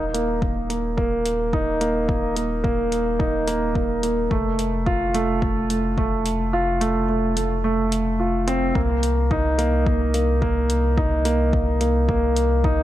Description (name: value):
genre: piano and strings electronica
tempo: 108 BPM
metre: 4/4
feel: straight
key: C dorian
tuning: A4 = 441 Hz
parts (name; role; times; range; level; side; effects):
- dark concert grand piano; riff; 0.0-12.8 s; A3 to F4; -21 LUFS; right 1 dB; low-pass filter, ping-pong delay
- round analog bass; bass; 0.0-12.8 s; Eb1 to C2; -24 LUFS; left 1 dB; sidechain pumping
- electronic hi-hat; drums; 0.1-12.5 s; none; -32 LUFS; left 1 dB; overdrive
- electronic kick drum; drums; 0.4-12.8 s; none; -25 LUFS; left 1 dB; overdrive
room: light reverb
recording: none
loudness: -19 LUFS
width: side -13 dB against mid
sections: 0.0-12.8 A section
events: kick drops out 6.5-8.8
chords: 0.0 Eb5; 4.3 F; 8.8 Cm7